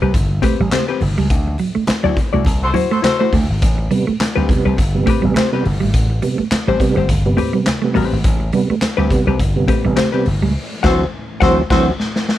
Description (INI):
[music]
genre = funk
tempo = 104 BPM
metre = 4/4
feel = swing 56% on 16ths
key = A dorian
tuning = A4 = 438 Hz
[part]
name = hollow-body jazz guitar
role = accompaniment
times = 0.0-11.9 s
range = C4 to F#5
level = -19 LUFS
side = left 8 dB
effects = none
[part]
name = mellow electric guitar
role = riff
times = 0.0-10.5 s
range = F#3 to A3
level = -19 LUFS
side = right 6 dB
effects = none
[part]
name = slap bass with an envelope filter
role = bass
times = 0.0-11.9 s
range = G1 to D2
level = -18 LUFS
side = equal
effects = none
[part]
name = raw garage drum kit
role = drums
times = 0.1-12.4 s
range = crash cymbal, handclaps, hi-hat, kick drum, snare drum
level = -19 LUFS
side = equal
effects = none
[part]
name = congas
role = percussion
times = 0.1-10.4 s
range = none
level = -26 LUFS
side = right 2 dB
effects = none
[part]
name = mellow horn section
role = second line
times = 2.6-3.2, 10.8-11.9 s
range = F#4 to C5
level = -20 LUFS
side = left 1 dB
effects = slapback echo
[part]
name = tonewheel organ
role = stabs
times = 3.6-11.9 s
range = A2 to C4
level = -18 LUFS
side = right 3 dB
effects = overdrive, chorus vibrato, slow rotary speaker
[sound]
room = light reverb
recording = none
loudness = -14 LUFS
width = side -13 dB against mid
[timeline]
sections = 0.0-12.4 A section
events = break 0.0-3.6; band accent 1.3-3.6, 10.6-12.4; drum fill 10.6-12.4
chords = 0.0 Am9; 1.3 D9; 3.6 Am9; 10.6 D9